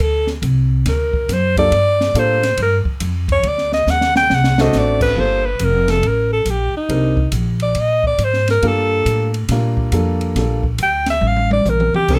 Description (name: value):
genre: jazz, small-group swing and bop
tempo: 139 BPM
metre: 4/4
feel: swing 65% on 8ths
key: G minor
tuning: A4 = 439 Hz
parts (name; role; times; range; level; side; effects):
- breathy alto saxophone; melody; 0.0-12.2 s; Eb4 to G5; -19 LUFS; equal; none
- upright bass; bass; 0.0-12.2 s; F1 to Bb2; -21 LUFS; equal; none
- open jazz drum kit; drums; 0.3-12.2 s; crash cymbal, hi-hat, kick drum, ride cymbal, snare drum, toms; -26 LUFS; equal; none
- warm grand piano; accompaniment; 1.6-12.2 s; G3 to Bb4; -24 LUFS; equal; none
room: light reverb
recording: none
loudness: -17 LUFS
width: mono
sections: 0.0-5.2 A section; 5.2-12.2 A section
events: alto saxophone solo 0.0-12.2; drum fill 3.9-4.7, 11.2-12.1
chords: 0.0 D7; 1.7 Gm7; 3.4 D7; 5.2 Gm7; 6.9 Cm7; 8.6 Gm7